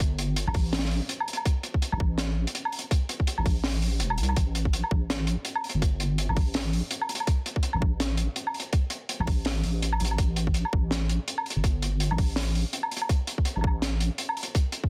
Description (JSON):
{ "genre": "half-time drum and bass", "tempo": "165 BPM", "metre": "4/4", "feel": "swing 58% on 16ths, half-time", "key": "unclear", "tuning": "A4 = 444 Hz", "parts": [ { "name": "deep soft wobble bass", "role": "bass", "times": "0.0-14.1 s", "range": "E1 to C2", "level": "-30 LUFS", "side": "equal", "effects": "chorus" }, { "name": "crunchy breakbeat drum kit", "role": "drums", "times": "0.0-14.8 s", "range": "hi-hat, snare drum, woodblock", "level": "-33 LUFS", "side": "equal", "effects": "none" }, { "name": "electronic kick drum", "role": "drums", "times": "0.0-14.9 s", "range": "none", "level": "-27 LUFS", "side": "equal", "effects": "overdrive" } ], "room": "little or no reverb", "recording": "dense, heavily limited modern master", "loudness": "-27 LUFS", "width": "mono", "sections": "0.0-14.9 A section", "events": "none", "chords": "none" }